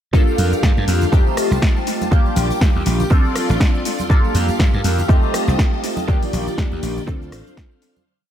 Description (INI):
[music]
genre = filtered disco house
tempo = 121 BPM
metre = 4/4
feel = swing 57% on 16ths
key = G minor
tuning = A4 = 440 Hz
[part]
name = funky polysynth comp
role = accompaniment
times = 0.1-8.0 s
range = A3 to A4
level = -22 LUFS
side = equal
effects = chorus, phaser, sidechain pumping
[part]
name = string machine, full ensemble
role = sustained chords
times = 0.1-8.1 s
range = Eb3 to D6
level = -28 LUFS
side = equal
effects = ensemble chorus, sidechain pumping
[part]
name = slap bass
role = bass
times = 0.1-7.4 s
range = A1 to G2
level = -20 LUFS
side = equal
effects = sidechain pumping
[part]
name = electronic kick drum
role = drums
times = 0.1-7.7 s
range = none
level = -15 LUFS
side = equal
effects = none
[part]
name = house drum kit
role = drums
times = 0.1-8.1 s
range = hi-hat, rim click, shaker, snare drum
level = -25 LUFS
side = equal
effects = sidechain pumping on perc, sidechain pumping on hats, analog delay
[part]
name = tambourine and congas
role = percussion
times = 0.1-8.1 s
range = none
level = -31 LUFS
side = right 3 dB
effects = sidechain pumping on perc, analog delay
[sound]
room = digital ambience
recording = echo-heavy mix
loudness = -15 LUFS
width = side -10 dB against mid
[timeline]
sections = 0.1-8.1 drop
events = drop 0.1-8.1; fade-out 5.4-8.1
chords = 0.1 Gm7; 1.1 F7; 2.1 Ebmaj7; 3.1 Dm7; 4.1 Gm7; 5.1 F7; 6.1 Ebmaj7; 7.1 Dm7